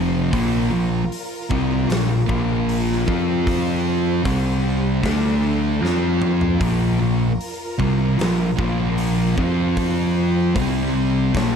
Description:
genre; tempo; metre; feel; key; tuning
stoner and doom metal; 76 BPM; 4/4; straight; unclear; A4 = 440 Hz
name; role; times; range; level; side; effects
string machine, violas; sustained chords; 0.0-11.6 s; D4 to C6; -31 LUFS; right 1 dB; ensemble chorus
thick fuzz guitar; riff; 0.0-11.6 s; F2 to F4; -21 LUFS; left 7 dB; distortion
thick fuzz guitar; riff; 0.0-11.6 s; F2 to F4; -23 LUFS; right 12 dB; distortion
growling picked electric bass; bass; 0.0-11.6 s; F1 to F2; -25 LUFS; equal; overdrive
big rock drum kit; drums; 0.3-11.5 s; hi-hat, kick drum, snare drum, toms; -28 LUFS; equal; none
room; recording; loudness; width
small room reverb; dark, warm production; -18 LUFS; side -7 dB against mid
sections
0.0-11.6 A section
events
drum fill 5.8-6.6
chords
0.3 Bb5; 3.1 F5; 4.3 C5; 5.0 D5; 5.8 F5; 6.6 Bb5; 9.4 F5; 10.5 C5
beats
| 0.33 1.11 1.90 2.68 | 3.47 4.25 5.04 5.82 | 6.61 7.39 8.18 8.97 | 9.76 10.54 11.33

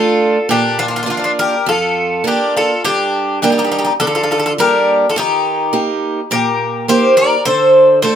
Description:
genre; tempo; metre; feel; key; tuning
greek folk, Greek bouzouki band; 103 BPM; 4/4; straight; unclear; A4 = 443 Hz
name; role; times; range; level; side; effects
Greek bouzouki; melody; 0.0-8.2 s; F4 to D5; -14 LUFS; equal; none
Greek bouzouki; second line; 0.0-8.2 s; D4 to Bb4; -20 LUFS; left 4 dB; none
picked steel-string acoustic guitar; accompaniment; 0.0-8.2 s; F2 to G4; -17 LUFS; right 3 dB; none
room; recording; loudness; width
wet studio reverb, RT60 0.5 s; none; -12 LUFS; side -9 dB against mid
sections
0.0-8.2 A section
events
speeding up 0.0-8.2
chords
0.5 Bb; 2.8 Gm; 5.2 Eb; 7.5 Dm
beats
| 0.48 1.08 1.67 2.25 | 2.84 3.42 4.00 4.58 | 5.16 5.74 6.31 6.88 | 7.45 8.02

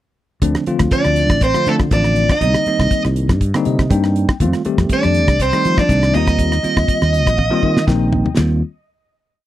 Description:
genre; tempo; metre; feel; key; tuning
electric jazz fusion; 121 BPM; 4/4; swing 54% on 16ths; Eb lydian; A4 = 440 Hz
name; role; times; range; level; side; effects
bell-like tine electric piano; accompaniment; 0.4-8.6 s; D3 to G5; -19 LUFS; left 1 dB; medium stereo tremolo
sustaining fretless electric bass; bass; 0.4-8.6 s; A1 to F3; -17 LUFS; equal; none
damped 70s drum kit; drums; 0.4-8.5 s; hi-hat, kick drum, ride cymbal, rim click, snare drum, toms; -18 LUFS; equal; none
smooth overdriven lead guitar; melody; 0.9-7.8 s; A4 to Eb5; -18 LUFS; right 1 dB; none
vintage hollow-body jazz guitar; second line; 0.9-7.9 s; A3 to Eb4; -24 LUFS; right 2 dB; none
room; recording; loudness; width
little or no reverb; dry, close 1970s-style studio recording; -13 LUFS; side -13 dB against mid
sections
0.4-8.4 A section; 8.4-9.5 final chord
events
tine electric piano fill 3.4-4.4, 6.9-8.4; drum fill 7.4-8.4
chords
0.4 Dm7; 2.4 Cm7; 4.4 F7; 6.1 Eb69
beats
| 0.43 0.93 1.43 1.92 | 2.42 2.92 3.41 3.91 | 4.40 4.90 5.40 5.89 | 6.39 6.88 7.38 7.88 | 8.38

